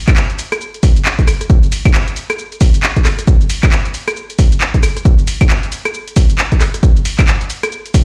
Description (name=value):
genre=UK garage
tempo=135 BPM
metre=4/4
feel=swing 61% on 16ths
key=none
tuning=none
part: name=electronic kick drum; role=drums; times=0.1-8.0 s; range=none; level=-13 LUFS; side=equal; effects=none
part: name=punchy analog drum machine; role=drums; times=0.1-8.0 s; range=claves, handclaps, hi-hat, rim click, shaker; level=-21 LUFS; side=equal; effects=none
room=little or no reverb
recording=played on a big sound system in a bare room, large studio reverb, vinyl crackle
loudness=-14 LUFS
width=mono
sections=0.0-8.0 A section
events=none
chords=none